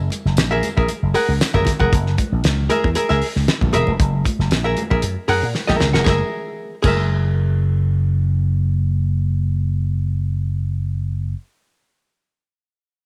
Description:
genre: funk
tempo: 116 BPM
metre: 4/4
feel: straight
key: F# mixolydian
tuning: A4 = 440 Hz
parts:
  - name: slap bass with an envelope filter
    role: bass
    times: 0.0-11.3 s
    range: E1 to A#2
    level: -21 LUFS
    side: equal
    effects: none
  - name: damped 70s drum kit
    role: drums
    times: 0.1-7.0 s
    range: crash cymbal, hi-hat, kick drum, snare drum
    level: -24 LUFS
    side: equal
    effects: none
  - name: congas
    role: percussion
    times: 0.1-7.0 s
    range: none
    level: -32 LUFS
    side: equal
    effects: none
  - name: tambourine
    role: percussion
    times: 0.1-1.8 s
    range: none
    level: -39 LUFS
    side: equal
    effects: none
  - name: archtop guitar, miked and amplified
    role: accompaniment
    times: 0.5-11.4 s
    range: G#4 to F#5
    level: -24 LUFS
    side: equal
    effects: none
room: light reverb, small room ambience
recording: none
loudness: -19 LUFS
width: mono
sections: 0.0-6.1 A section; 6.1-10.2 B section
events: drum fill 5.5-6.1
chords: 0.0 F#9

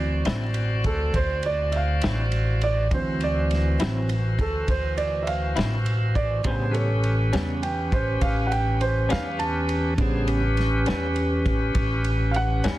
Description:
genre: slow blues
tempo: 68 BPM (dotted quarters)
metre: 12/8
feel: straight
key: D mixolydian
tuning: A4 = 440 Hz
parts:
  - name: warm upright piano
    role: accompaniment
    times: 0.0-12.8 s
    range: C#3 to A5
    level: -28 LUFS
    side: right 3 dB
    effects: none
  - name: bright tonewheel organ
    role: sustained chords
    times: 0.0-12.8 s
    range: E3 to D5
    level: -29 LUFS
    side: equal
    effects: slow rotary speaker
  - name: upright bass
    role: bass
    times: 0.0-12.8 s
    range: A1 to E2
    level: -24 LUFS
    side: equal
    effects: none
  - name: electric guitar through a small old amp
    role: accompaniment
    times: 0.3-12.8 s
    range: A2 to E4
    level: -31 LUFS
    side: left 5 dB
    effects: tremolo
  - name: warm soul drum kit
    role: drums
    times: 0.3-12.8 s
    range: kick drum, ride cymbal, snare drum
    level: -30 LUFS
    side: equal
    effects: none
room: light reverb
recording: dense, heavily limited modern master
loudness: -21 LUFS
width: side -16 dB against mid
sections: 0.0-12.8 A section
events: upright piano solo 0.0-12.8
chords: 0.0 D9; 6.5 A9

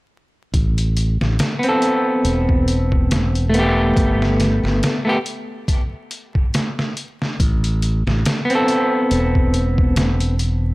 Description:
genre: trip hop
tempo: 70 BPM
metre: 4/4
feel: swing 56% on 16ths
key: A minor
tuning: A4 = 439 Hz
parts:
  - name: modern bright fingered electric bass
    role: bass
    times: 0.5-10.7 s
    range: E1 to A1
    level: -18 LUFS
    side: equal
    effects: none
  - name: trip hop sampler-style drum kit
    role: drums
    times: 0.5-10.6 s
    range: hi-hat, kick drum, snare drum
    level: -20 LUFS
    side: equal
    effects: none
  - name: electric guitar at the edge of break-up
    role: accompaniment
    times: 1.6-10.4 s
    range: A3 to A4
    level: -18 LUFS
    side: equal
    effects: harmonic tremolo, tape echo
room: little or no reverb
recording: dry, gritty hardware recording, vinyl crackle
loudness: -16 LUFS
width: side -21 dB against mid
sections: 0.5-10.7 A section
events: none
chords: 0.5 Amadd9; 4.0 Gadd9; 7.4 Amadd9

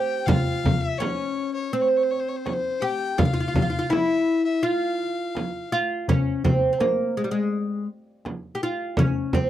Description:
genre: Arabic maqam ensemble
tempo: 83 BPM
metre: 4/4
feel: straight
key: F maqam nahawand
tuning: A4 = 437 Hz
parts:
  - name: oud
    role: melody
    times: 0.0-9.5 s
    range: G3 to G4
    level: -24 LUFS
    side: equal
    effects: none
  - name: warm violin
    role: second line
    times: 0.0-5.7 s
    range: C5 to G5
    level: -30 LUFS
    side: left 6 dB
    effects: none
  - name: darbuka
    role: percussion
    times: 0.3-9.3 s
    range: none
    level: -26 LUFS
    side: left 3 dB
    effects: none
  - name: frame drum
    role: percussion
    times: 0.3-9.5 s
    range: none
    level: -24 LUFS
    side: right 2 dB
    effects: none
room: light reverb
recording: dry, close 1970s-style studio recording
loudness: -21 LUFS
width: side -12 dB against mid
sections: 0.0-6.1 A section; 6.1-9.5 B section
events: none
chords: none

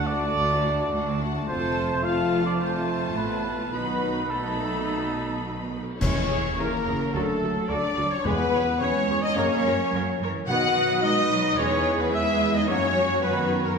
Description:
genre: cinematic, heroic adventure film score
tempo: 108 BPM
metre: 4/4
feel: straight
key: E lydian from 6.0 s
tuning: A4 = 438 Hz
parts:
  - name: warm symphonic violin section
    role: melody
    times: 0.0-13.8 s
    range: A4 to B5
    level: -32 LUFS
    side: left 4 dB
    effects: none
  - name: clear clarinet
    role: second line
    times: 0.0-13.8 s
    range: D#4 to F#5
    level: -34 LUFS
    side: left 2 dB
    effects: none
  - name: mellow concert flute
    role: second line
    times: 0.0-5.7 s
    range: A5 to B5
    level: -37 LUFS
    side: left 1 dB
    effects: none
  - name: rich symphonic violin section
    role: second line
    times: 0.0-13.8 s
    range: F#4 to F#5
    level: -36 LUFS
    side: left 3 dB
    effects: none
  - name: warm oboe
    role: second line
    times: 0.0-13.8 s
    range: A4 to F#5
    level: -33 LUFS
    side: equal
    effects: none
  - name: rich symphonic viola section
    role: accompaniment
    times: 0.0-13.8 s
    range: D4 to D#5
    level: -33 LUFS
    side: right 2 dB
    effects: none
  - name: mellow French horn section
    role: sustained chords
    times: 0.0-13.7 s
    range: A3 to F#4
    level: -29 LUFS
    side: left 3 dB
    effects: none
  - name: warm trombone section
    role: sustained chords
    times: 0.0-12.9 s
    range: C#3 to B3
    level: -34 LUFS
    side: right 2 dB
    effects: none
  - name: warm trumpet section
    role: stabs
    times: 0.0-13.8 s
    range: A4 to F#5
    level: -30 LUFS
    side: right 1 dB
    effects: none
  - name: rich symphonic cello section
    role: bass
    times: 0.0-13.8 s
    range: D2 to A#3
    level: -31 LUFS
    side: right 3 dB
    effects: none
  - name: warm chamber double bass section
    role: bass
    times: 0.0-13.8 s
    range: F1 to F#2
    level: -33 LUFS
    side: right 3 dB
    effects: none
  - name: cymbal swell, clash cymbals and concert bass drum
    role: percussion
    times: 3.7-7.1 s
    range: none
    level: -31 LUFS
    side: equal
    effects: none
  - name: timpani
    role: percussion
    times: 6.0-11.3 s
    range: E2 to B2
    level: -32 LUFS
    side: left 1 dB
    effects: none
room: wet recital hall reverb, RT60 1.8 s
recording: recorded in a church or concert hall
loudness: -22 LUFS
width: side -5 dB against mid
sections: 0.0-6.0 A section; 6.0-13.8 B section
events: band accent 6.0-6.6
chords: 0.0 D; 1.5 F; 3.7 B7; 6.0 E6; 7.1 D; 8.3 E6; 9.4 F#; 10.5 B; 11.6 E; 12.7 F#

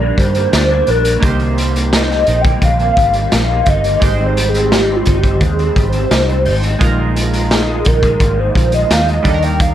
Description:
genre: indie pop, bedroom pop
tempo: 86 BPM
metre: 4/4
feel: straight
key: unclear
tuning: A4 = 439 Hz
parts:
  - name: hollow clarinet-like synth lead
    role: melody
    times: 0.0-9.7 s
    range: F4 to G5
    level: -16 LUFS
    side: equal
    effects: phaser, ensemble chorus, plate reverb, analog delay
  - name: chorused retro synth keys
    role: accompaniment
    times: 0.0-9.7 s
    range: G3 to C5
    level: -23 LUFS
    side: right 6 dB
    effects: cassette tape, plate reverb
  - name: electric guitar through a small old amp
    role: accompaniment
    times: 0.0-9.7 s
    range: Ab2 to Eb4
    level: -22 LUFS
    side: left 4 dB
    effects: ensemble chorus, vibrato effect, plate reverb
  - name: vintage muted fingered electric bass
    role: bass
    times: 0.0-9.7 s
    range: G1 to G2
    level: -17 LUFS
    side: equal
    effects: none
  - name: raw garage drum kit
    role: drums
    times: 0.2-9.7 s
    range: hi-hat, kick drum, snare drum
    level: -16 LUFS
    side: equal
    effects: none
room: light reverb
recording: none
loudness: -11 LUFS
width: side -11 dB against mid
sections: 0.0-9.7 A section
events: soft synth lead solo 0.0-9.7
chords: 0.0 Ebmaj7; 1.2 Cm7; 4.0 Abmaj7; 6.8 Bb7sus4

